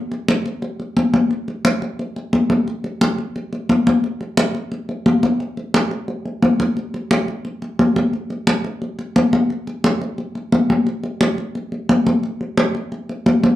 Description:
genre	jazz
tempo	176 BPM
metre	4/4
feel	straight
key	none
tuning	none
part	congas	percussion	0.1-13.6 s	none	-17 LUFS	equal	none
room	wet club reverb, RT60 0.7 s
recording	heard from further back in the room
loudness	-17 LUFS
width	side -14 dB against mid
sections	0.0-2.7 A section; 2.7-13.6 B section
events	none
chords	none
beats	0.28 0.62 0.96 | 1.31 1.65 1.99 2.33 | 2.67 3.01 3.35 3.69 | 4.03 4.38 4.72 5.06 | 5.40 5.74 6.08 6.42 | 6.76 7.11 7.45 7.79 | 8.13 8.47 8.82 9.16 | 9.50 9.84 10.19 10.53 | 10.87 11.21 11.55 11.90 | 12.24 12.58 12.92 13.27

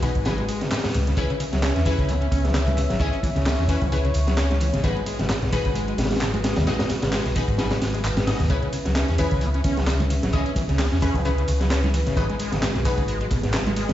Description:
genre	breakbeat, breaks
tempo	131 BPM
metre	4/4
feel	swing 56% on 16ths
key	C# minor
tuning	A4 = 440 Hz
part	dark analog pad	sustained chords	0.0-13.9 s	G#3 to E5	-30 LUFS	equal	chorus, sidechain pumping
part	overdriven acid bass	riff	0.0-13.9 s	G#1 to C#4	-28 LUFS	equal	distortion, wide subtle chorus, digital delay
part	orchestra-hit-like synth stab	stabs	0.0-13.9 s	C#4 to D#5	-30 LUFS	left 3 dB	built-in reverb, digital delay
part	hollow-body short-scale fingered electric bass	bass	0.0-13.9 s	G#1 to E2	-24 LUFS	equal	tube saturation
part	crunchy breakbeat drum kit	drums	0.0-13.9 s	hi-hat, kick drum, snare drum	-26 LUFS	equal	none
part	garage drum kit	drums	0.0-13.9 s	handclaps, hi-hat, ride cymbal	-34 LUFS	equal	overdrive
part	congas	percussion	0.8-13.9 s	none	-33 LUFS	right 2 dB	none
room	light reverb, small room ambience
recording	played on a big sound system in a bare room, stone room reverb, vinyl crackle, nothing above 7.7 kHz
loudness	-20 LUFS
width	side -12 dB against mid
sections	0.0-13.9 A section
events	none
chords	0.0 G#m7; 1.2 C#m7; 4.8 G#m7; 8.5 C#m7; 12.2 G#m7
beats	0.26 0.72 | 1.17 1.63 2.09 2.55 | 3.01 3.46 3.92 4.38 | 4.84 5.30 5.75 6.21 | 6.67 7.13 7.59 8.04 | 8.50 8.96 9.42 9.88 | 10.33 10.79 11.25 11.71 | 12.17 12.62 13.08 13.54

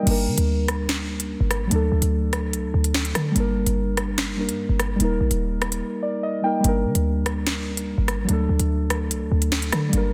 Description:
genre	hip hop, drill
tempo	146 BPM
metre	4/4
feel	half-time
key	G harmonic minor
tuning	A4 = 444 Hz
part	muted felt-like synth keys	accompaniment	0.0-10.1 s	F#3 to G5	-27 LUFS	equal	chorus
part	short 808-style bass	bass	0.1-10.1 s	Eb1 to D3	-26 LUFS	equal	none
part	drill drum kit	drums	0.1-10.0 s	crash cymbal, finger snaps, hi-hat, rim click, snare drum	-29 LUFS	equal	overdrive
room	light reverb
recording	dense, heavily limited modern master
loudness	-23 LUFS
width	mono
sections	0.1-10.1 A section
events	drums muted 5.8-6.6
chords	0.1 Gm; 1.7 D; 3.4 Gm; 5.0 Eb; 6.6 Gm; 8.3 D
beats	| 0.07 0.48 0.89 1.30 | 1.71 2.12 2.53 2.94 | 3.36 3.77 4.18 4.59 | 5.00 5.41 5.82 6.23 | 6.64 7.05 7.46 7.88 | 8.29 8.70 9.11 9.52 | 9.93

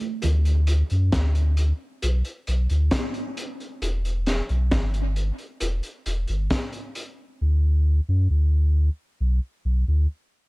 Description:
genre	dub reggae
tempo	67 BPM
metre	4/4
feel	straight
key	E minor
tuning	A4 = 445 Hz
part	crunchy breakbeat drum kit	drums	0.0-7.2 s	hi-hat, kick drum, snare drum	-27 LUFS	equal	dub echo
part	warm sub bass	bass	0.2-10.1 s	E1 to F#2	-20 LUFS	equal	none
room	small room ambience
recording	none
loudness	-21 LUFS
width	side -23 dB against mid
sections	0.0-10.5 A section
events	part muted 7.4-10.5; break 9.2-10.5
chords	none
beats	| 0.23 1.12 2.02 2.92 | 3.81 4.71 5.61 6.50 | 7.40 8.29 9.19

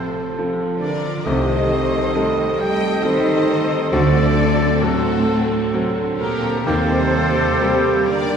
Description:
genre	classical, romantic movement for piano and orchestra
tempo	61-68 BPM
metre	3/4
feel	rubato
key	unclear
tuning	A4 = 442 Hz
part	clear grand piano	melody	0.0-8.4 s	A1 to A4	-22 LUFS	left 1 dB	none
part	rich studio violin section	melody	0.0-8.4 s	F#4 to Eb5	-30 LUFS	left 3 dB	none
part	concert flute	second line	0.0-8.4 s	F#4 to Eb5	-27 LUFS	left 1 dB	none
part	rich studio violin section	second line	0.0-8.4 s	A4 to G5	-28 LUFS	left 3 dB	none
part	warm oboe	second line	0.0-8.4 s	A4 to G5	-27 LUFS	equal	none
part	clear studio viola section	accompaniment	0.0-8.4 s	C3 to C4	-29 LUFS	right 1 dB	none
part	mellow French horn section	sustained chords	0.0-8.4 s	A3 to G4	-27 LUFS	left 1 dB	none
part	warm trombone section	sustained chords	0.0-8.4 s	F3 to C4	-30 LUFS	right 1 dB	none
part	dark trumpet section	stabs	0.0-8.4 s	G4 to A4	-26 LUFS	right 3 dB	none
part	rich studio cello section	bass	0.0-8.4 s	A2 to G3	-26 LUFS	right 3 dB	none
part	clear studio double bass section	bass	1.2-7.4 s	C2 to Eb2	-27 LUFS	right 1 dB	none
part	bright clarinet	second line	1.3-7.0 s	F#4 to G4	-31 LUFS	left 2 dB	none
part	mellow bassoon	accompaniment	1.3-7.0 s	A3 to C4	-29 LUFS	right 1 dB	none
part	clear tuba	bass	1.3-7.4 s	C2 to Eb2	-28 LUFS	right 2 dB	none
part	timpani	percussion	3.9-5.2 s	none	barely audible	none	none
room	wet scoring stage reverb, RT60 1.8 s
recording	heard from further back in the room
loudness	-16 LUFS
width	side -7 dB against mid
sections	0.0-8.4 A section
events	none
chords	0.0 F/A; 1.3 Am7b5/C; 3.9 D7; 6.7 Eb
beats	0.38 | 1.27 2.15 3.05 | 3.93 4.83 5.75 | 6.67 7.61

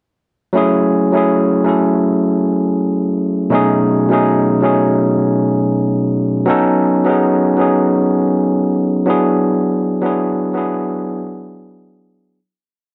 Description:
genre	R&B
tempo	81 BPM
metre	4/4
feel	swing 60% on 16ths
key	F# minor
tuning	A4 = 441 Hz
part	overdriven tine electric piano	solo	0.5-12.4 s	B2 to A4	-15 LUFS	equal	none
room	moderate studio reverb, RT60 0.6 s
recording	none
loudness	-15 LUFS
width	mono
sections	0.5-12.4 A section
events	fade-out 9.4-12.4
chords	0.5 F#m9; 3.5 B13; 6.5 B9; 9.1 E9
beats	| 0.53 1.27 2.01 2.75 | 3.49 4.24 4.98 5.72 | 6.46 7.20 7.94 8.68 | 9.42 10.16 10.90 11.64

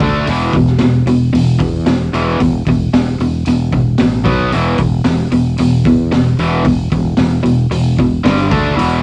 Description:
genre	garage rock duo or trio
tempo	113 BPM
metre	4/4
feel	straight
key	unclear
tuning	A4 = 440 Hz
part	overdriven electric guitar	riff	0.0-9.0 s	E2 to D4	-16 LUFS	equal	none
part	sustaining fretless electric bass	bass	0.0-9.0 s	E1 to E2	-19 LUFS	equal	overdrive
part	raw garage drum kit	drums	0.0-8.9 s	hi-hat, kick drum, snare drum	-21 LUFS	equal	vintage 12-bit sampler grit, cassette tape
room	moderate small room reverb, RT60 0.6 s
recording	home recording on cassette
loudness	-13 LUFS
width	mono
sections	0.0-9.0 A section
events	none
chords	0.0 D5; 0.3 E5; 4.3 B5; 4.5 E5; 8.3 G5; 8.5 D5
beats	| 0.28 0.81 1.34 1.87 | 2.40 2.93 3.46 4.00 | 4.53 5.06 5.59 6.13 | 6.66 7.19 7.72 8.26 | 8.79

